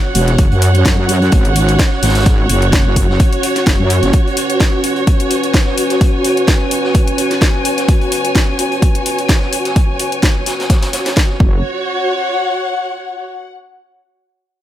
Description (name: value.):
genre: bass house.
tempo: 128 BPM.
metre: 4/4.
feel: swing 54% on 16ths.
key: unclear.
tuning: A4 = 440 Hz.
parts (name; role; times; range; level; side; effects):
dark analog pad; sustained chords; 0.0-11.6 s; C#4 to C#5; -21 LUFS; left 1 dB; wide subtle chorus, sidechain pumping.
warm studio string section; texture; 0.0-13.5 s; F#4 to G#5; -18 LUFS; right 1 dB; sidechain pumping.
house drum kit; drums; 0.1-11.3 s; hi-hat, snare drum; -19 LUFS; left 1 dB; overdrive, studio reverb.
wobble bass; bass; 0.2-4.1, 11.4-11.6 s; E1 to F#2; -13 LUFS; equal; chorus, tube saturation, sidechain pumping.
street-band drum kit; drums; 0.2-11.4 s; hi-hat, snare drum; -27 LUFS; equal; none.
electronic kick drum; drums; 0.4-11.5 s; none; -13 LUFS; equal; overdrive, studio reverb.
room: light reverb.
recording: none.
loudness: -11 LUFS.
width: side -12 dB against mid.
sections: 0.0-11.6 A section; 11.6-13.5 B section.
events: none.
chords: 0.0 F#5.